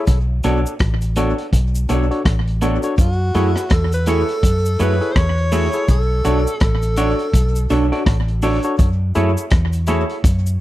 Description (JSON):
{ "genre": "lovers rock reggae", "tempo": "83 BPM", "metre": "4/4", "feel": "swing 60% on 16ths", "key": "unclear", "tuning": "A4 = 441 Hz", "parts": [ { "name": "barky tine electric piano", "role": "accompaniment", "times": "0.0-10.0 s", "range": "D4 to C#5", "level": "-22 LUFS", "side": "left 3 dB", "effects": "overdrive, slapback echo" }, { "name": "vintage muted fingered electric bass", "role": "bass", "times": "0.1-10.6 s", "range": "A1 to F#2", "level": "-18 LUFS", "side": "equal", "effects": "none" }, { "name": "crunchy breakbeat drum kit", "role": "drums", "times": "0.1-10.4 s", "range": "hi-hat, kick drum, rim click", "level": "-17 LUFS", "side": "equal", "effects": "slapback echo" }, { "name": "cabasa", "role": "percussion", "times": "0.1-10.6 s", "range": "none", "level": "-37 LUFS", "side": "left 1 dB", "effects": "slapback echo" }, { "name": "electric guitar through a small old amp", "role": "stabs", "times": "0.4-10.0 s", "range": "A3 to D5", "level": "-25 LUFS", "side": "right 5 dB", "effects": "spring reverb" }, { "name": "clear tenor saxophone", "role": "melody", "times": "3.0-7.7 s", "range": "F#4 to C#5", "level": "-23 LUFS", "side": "equal", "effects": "tape echo" } ], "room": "little or no reverb", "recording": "dry, close 1970s-style studio recording", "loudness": "-15 LUFS", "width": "side -15 dB against mid", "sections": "0.0-10.6 A section", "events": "none", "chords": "0.1 Bm7; 3.0 F#m7; 5.9 Bm7; 8.8 F#m7" }